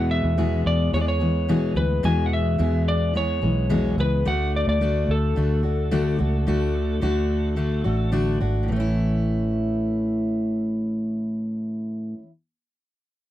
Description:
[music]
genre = acoustic pop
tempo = 108 BPM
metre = 4/4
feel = straight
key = A major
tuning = A4 = 440 Hz
[part]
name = electric slide guitar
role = melody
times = 0.0-8.1 s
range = A4 to G#5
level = -28 LUFS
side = left 1 dB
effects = none
[part]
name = fingerpicked steel-string acoustic guitar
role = accompaniment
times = 0.0-12.3 s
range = E2 to G#4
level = -24 LUFS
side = left 1 dB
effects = none
[part]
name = vintage muted fingered electric bass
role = bass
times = 0.0-12.0 s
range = G#1 to E2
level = -24 LUFS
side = right 1 dB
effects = none
[sound]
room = little or no reverb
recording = dry, close 1970s-style studio recording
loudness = -20 LUFS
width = side -13 dB against mid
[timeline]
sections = 0.0-8.7 A section; 8.7-10.9 B section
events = none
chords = 0.0 E; 4.3 D; 8.7 A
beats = 0.37 0.93 1.48 | 2.03 2.59 3.14 3.70 | 4.25 4.80 5.36 5.91 | 6.47 7.02 7.58 8.13 | 8.69 9.24 9.80 10.35

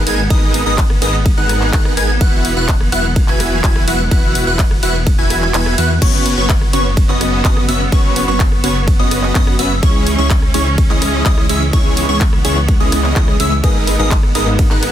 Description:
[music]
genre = EDM, festival progressive house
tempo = 126 BPM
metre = 4/4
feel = straight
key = unclear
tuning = A4 = 440 Hz
[part]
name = bright studio string section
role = sustained chords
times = 0.0-14.9 s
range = C#3 to C#4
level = -23 LUFS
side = right 2 dB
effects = sidechain pumping
[part]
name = plucky unison lead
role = arpeggios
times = 0.0-14.9 s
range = C#6 to G#6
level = -22 LUFS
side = equal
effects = phaser, sidechain pumping, ping-pong delay
[part]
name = dense compressed supersaw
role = riff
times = 0.0-14.9 s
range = G#3 to G#5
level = -19 LUFS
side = equal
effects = sidechain pumping, ping-pong delay
[part]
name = wide detuned saw bass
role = bass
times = 0.0-14.9 s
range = E1 to F#2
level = -19 LUFS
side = equal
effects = chorus, sidechain pumping
[part]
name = big-room dance drum kit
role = drums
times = 0.1-14.9 s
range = crash cymbal, handclaps, hi-hat, ride cymbal, rim click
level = -22 LUFS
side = equal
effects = none
[part]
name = electronic kick drum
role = drums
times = 0.3-14.7 s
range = none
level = -14 LUFS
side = equal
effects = none
[part]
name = clear grand piano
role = accompaniment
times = 13.6-14.6 s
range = G#2 to B4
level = -23 LUFS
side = left 3 dB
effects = sidechain pumping, ping-pong delay
[sound]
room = little or no reverb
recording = dense, heavily limited modern master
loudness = -11 LUFS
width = side -11 dB against mid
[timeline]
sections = 0.0-6.0 A section; 6.0-14.9 A section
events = drop 0.0-6.0, 6.0-14.9; kick drops out 5.5-6.0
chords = 0.0 G#madd9; 2.2 Esus2; 6.0 F#sus4; 9.8 C#m; 13.6 G#madd9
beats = | 0.30 0.78 1.26 1.73 | 2.21 2.69 3.16 3.64 | 4.11 4.59 5.07 5.54 | 6.02 6.49 6.97 7.45 | 7.92 8.40 8.88 9.35 | 9.83 10.30 10.78 11.26 | 11.73 12.21 12.69 13.16 | 13.64 14.11 14.59

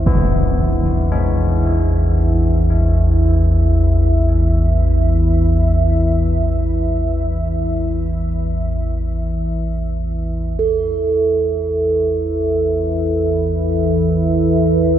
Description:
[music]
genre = dark ambient drone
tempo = free time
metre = none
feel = none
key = A harmonic minor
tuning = A4 = 440 Hz
[part]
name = deep dark ambient pad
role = sustained chords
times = 0.0-15.0 s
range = E3 to E5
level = -21 LUFS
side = equal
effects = chorus, built-in reverb
[part]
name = carillon bells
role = arpeggios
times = 0.0-7.4 s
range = C3 to C4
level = -29 LUFS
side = left 3 dB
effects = ping-pong delay
[part]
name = deep rumbling drone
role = drone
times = 0.0-15.0 s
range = A1 to E2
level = -16 LUFS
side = equal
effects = built-in reverb, wide subtle chorus
[part]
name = bronze singing bowl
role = texture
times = 0.0-15.0 s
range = E4 to A4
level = -21 LUFS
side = right 4 dB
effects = none
[sound]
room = wet cathedral reverb, RT60 5.1 s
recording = dark, warm production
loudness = -14 LUFS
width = side -11 dB against mid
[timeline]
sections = 0.0-10.6 A section; 10.6-15.0 A section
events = fade-in on church bells 0.0-10.6; fade-out on ambient pad 0.0-10.6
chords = 0.0 Amadd9; 10.6 Asus2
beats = free time

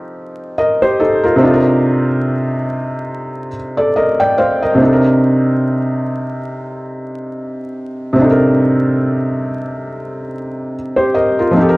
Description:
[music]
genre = hip hop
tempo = 71 BPM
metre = 4/4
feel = swing 57% on 16ths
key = C minor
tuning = A4 = 440 Hz
[part]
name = felt-muted upright piano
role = solo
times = 0.0-11.8 s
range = C3 to G5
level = -13 LUFS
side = equal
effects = analog delay
[sound]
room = wet studio reverb, RT60 0.6 s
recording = vinyl crackle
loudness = -12 LUFS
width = side -21 dB against mid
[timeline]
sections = 0.0-4.8 A section; 4.8-11.8 B section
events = none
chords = 0.0 F7sus4; 1.4 Cm11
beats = 0.57 | 1.42 2.27 3.11 3.96 | 4.80 5.64 6.49 7.33 | 8.18 9.03 9.87 10.71 | 11.56

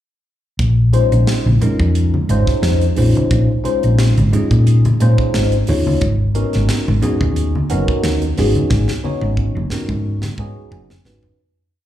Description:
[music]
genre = electric jazz fusion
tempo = 89 BPM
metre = 4/4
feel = swing 54% on 16ths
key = Bb phrygian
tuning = A4 = 437 Hz
[part]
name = hollow-body short-scale fingered electric bass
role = bass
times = 0.6-11.3 s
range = Gb1 to Bb2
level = -15 LUFS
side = equal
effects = none
[part]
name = crisp fusion drum kit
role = drums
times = 0.6-11.4 s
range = hi-hat, kick drum, snare drum, toms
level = -23 LUFS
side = equal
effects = none
[part]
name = tine electric piano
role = accompaniment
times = 0.9-11.4 s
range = Ab3 to Ab5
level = -20 LUFS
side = left 1 dB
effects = phaser, slapback echo
[part]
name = congas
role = percussion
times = 1.5-11.4 s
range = none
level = -22 LUFS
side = equal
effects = none
[sound]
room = light reverb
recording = live gig heard through the venue's PA, club reverb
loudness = -13 LUFS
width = side -12 dB against mid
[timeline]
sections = 0.6-11.4 groove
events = fade-out 8.7-11.4; drum fill 8.7-11.4; tine electric piano fill 10.4-11.4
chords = 0.6 Bbm11; 6.0 Abm11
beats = | 0.60 1.28 1.96 2.64 | 3.32 3.99 4.67 5.35 | 6.02 6.70 7.37 8.04 | 8.71 9.39 10.06 10.73

